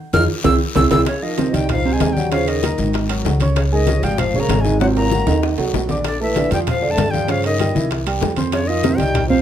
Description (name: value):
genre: Afro-Cuban jazz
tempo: 193 BPM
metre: 4/4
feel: straight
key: F minor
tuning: A4 = 441 Hz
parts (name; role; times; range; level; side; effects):
- breathy bright jazz flute; melody; 0.1-9.4 s; Db5 to F6; -24 LUFS; left 1 dB; none
- dark grand piano; accompaniment; 0.1-9.4 s; C3 to D6; -21 LUFS; right 5 dB; none
- upright bass; bass; 0.1-9.4 s; Ab1 to G2; -21 LUFS; left 1 dB; none
- congas; percussion; 0.1-9.4 s; none; -25 LUFS; left 2 dB; none
- cowbell and bongos; percussion; 0.1-9.3 s; none; -27 LUFS; left 8 dB; none
- guiro; percussion; 0.1-9.4 s; none; -33 LUFS; left 6 dB; none
- timbales; percussion; 0.1-9.3 s; none; -27 LUFS; right 6 dB; none
- trombone with cup mute; second line; 1.1-9.4 s; Db3 to Bb3; -24 LUFS; left 4 dB; tape echo
room: moderate club reverb, RT60 0.7 s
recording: none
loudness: -15 LUFS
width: side -10 dB against mid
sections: 0.0-1.1 A section; 1.1-9.4 B section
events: band accent 0.0-1.1; flute solo 0.0-1.1; drum fill 0.3-1.1, 4.8-6.0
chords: 0.5 Caug; 1.1 F5; 2.3 Eb5; 2.9 Ab5; 3.6 Dbadd9; 4.8 Ab9; 6.0 Bbmaj7; 7.3 Eb13b9; 7.9 C; 8.5 Fsus2